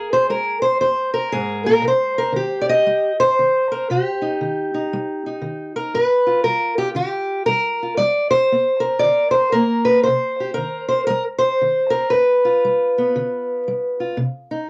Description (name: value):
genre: acoustic country blues, solo or duo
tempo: 117 BPM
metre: 4/4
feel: swing 63% on 8ths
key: C minor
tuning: A4 = 440 Hz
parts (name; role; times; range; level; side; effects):
- fingerpicked steel-string acoustic guitar; solo; 0.0-14.7 s; F2 to Eb5; -19 LUFS; equal; cassette tape
room: light reverb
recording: home recording on cassette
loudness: -19 LUFS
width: mono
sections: 0.0-14.2 A section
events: none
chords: 0.0 Fm; 1.8 Cm; 5.9 G7#9; 10.1 Cm7; 12.1 G7; 14.2 Cm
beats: 0.31 0.82 1.34 | 1.85 2.36 2.87 3.38 | 3.90 4.41 4.92 5.43 | 5.95 6.46 6.97 7.49 | 8.00 8.52 9.03 9.55 | 10.06 10.57 11.09 11.60 | 12.12 12.63 13.15 13.66 | 14.18 14.69